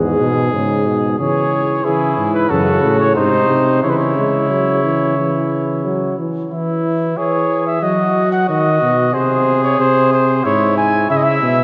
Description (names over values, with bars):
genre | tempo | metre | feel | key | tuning
classical, imitative canzona for brass ensemble | 91 BPM | 4/4 | straight | C# minor | A4 = 440 Hz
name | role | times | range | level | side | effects
clear trumpet | second line | 0.0-11.6 s | D#4 to G#4 | -23 LUFS | equal | none
clear trombone | accompaniment | 0.0-6.5 s | G#2 to G#3 | -22 LUFS | equal | none
mellow bass trombone | bass | 0.0-11.6 s | E2 to F#3 | -20 LUFS | equal | none
warm trumpet | melody | 1.2-11.6 s | G#4 to G#5 | -20 LUFS | equal | none
room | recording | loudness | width
wet church reverb, RT60 3.3 s | dark, warm production, nothing above 7.9 kHz | -16 LUFS | mono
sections
0.0-1.2 A section; 1.2-6.5 B section; 6.5-11.6 C section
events
none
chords
0.0 E; 1.2 C#m; 2.5 F#m; 3.2 G#; 3.8 C#m; 6.5 C#m/E; 7.8 B; 9.1 G#/B#; 10.4 C#m/G#